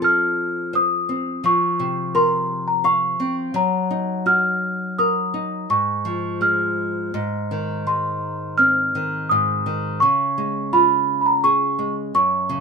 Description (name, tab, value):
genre	children's music, lullaby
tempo	84 BPM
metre	3/4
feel	rubato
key	Db major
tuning	A4 = 440 Hz
part	celesta	melody	0.0-12.6 s	Bb5 to F6	-19 LUFS	right 1 dB	none
part	nylon-string guitar	accompaniment	0.0-12.6 s	Gb2 to F5	-24 LUFS	left 1 dB	none
room	light reverb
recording	minimal, uncompressed stereo recording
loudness	-18 LUFS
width	side -5 dB against mid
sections	0.0-12.6 A section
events	none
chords	0.0 F; 1.4 Bbmadd9; 3.5 Ebm/Gb; 5.7 Db/Ab; 7.1 Ab; 10.0 Db